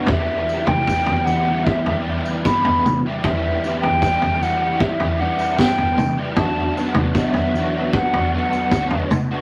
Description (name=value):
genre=psychedelic rock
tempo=77 BPM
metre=4/4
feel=straight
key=E minor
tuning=A4 = 440 Hz
part: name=crunchy overdriven guitar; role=riff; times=0.0-9.4 s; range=E2 to G4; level=-25 LUFS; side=equal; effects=rotary speaker
part: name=hollow concert flute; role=melody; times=0.1-9.1 s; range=D5 to B5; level=-24 LUFS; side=equal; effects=none
part: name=vintage muted picked electric bass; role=bass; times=0.1-9.0 s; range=D2 to E3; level=-31 LUFS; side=equal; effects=none
part: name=vintage drum kit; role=drums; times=0.1-9.3 s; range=kick drum, snare drum, toms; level=-24 LUFS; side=equal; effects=none
part: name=tambourine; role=percussion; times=0.5-9.3 s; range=none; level=-48 LUFS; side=equal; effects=none
room=moderate studio reverb, RT60 0.8 s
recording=vinyl crackle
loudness=-19 LUFS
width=mono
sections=0.0-9.4 A section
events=none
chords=0.1 Em; 6.4 Bm